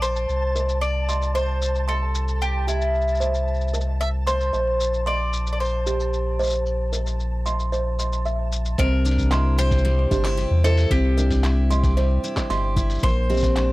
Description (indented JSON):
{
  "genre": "folktronica",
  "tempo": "113 BPM",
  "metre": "4/4",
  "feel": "straight",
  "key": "C mixolydian",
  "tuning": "A4 = 442 Hz",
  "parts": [
    { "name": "mandolin", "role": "melody", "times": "0.0-13.7 s", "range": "E4 to E5", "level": "-26 LUFS", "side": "left 1 dB", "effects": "tape echo" },
    { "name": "warm sub bass", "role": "bass", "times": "0.0-13.7 s", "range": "G1 to E2", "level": "-22 LUFS", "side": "equal", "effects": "none" },
    { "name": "lo-fi sampler-style drum kit", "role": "drums", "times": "0.0-13.7 s", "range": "handclaps, hi-hat, shaker", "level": "-33 LUFS", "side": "left 2 dB", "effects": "none" },
    { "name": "flickering grainy texture", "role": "texture", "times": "0.0-8.8 s", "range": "A5", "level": "-39 LUFS", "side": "right 2 dB", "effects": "built-in reverb" },
    { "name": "kalimba", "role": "second line", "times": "0.6-13.6 s", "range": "G4 to C6", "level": "-29 LUFS", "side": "right 4 dB", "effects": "tape echo" },
    { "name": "picked steel-string acoustic guitar", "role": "arpeggios", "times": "8.8-13.7 s", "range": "Bb2 to G4", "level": "-26 LUFS", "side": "left 1 dB", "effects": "none" },
    { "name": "electronic kick drum", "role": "drums", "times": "8.8-13.5 s", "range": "none", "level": "-24 LUFS", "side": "equal", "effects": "overdrive" }
  ],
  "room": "light reverb",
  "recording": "dry, close 1970s-style studio recording",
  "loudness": "-20 LUFS",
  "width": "side -19 dB against mid",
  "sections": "0.0-8.8 A section; 8.8-13.7 B section",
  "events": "none",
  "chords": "0.3 C; 4.5 Bbsus2; 8.8 Cadd9; 13.0 Bbadd9",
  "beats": "| 0.29 0.82 1.35 1.88 | 2.41 2.94 3.47 4.00 | 4.54 5.07 5.60 6.13 | 6.66 7.19 7.72 8.25 | 8.78 9.31 9.85 10.38 | 10.91 11.44 11.97 12.50 | 13.03 13.56"
}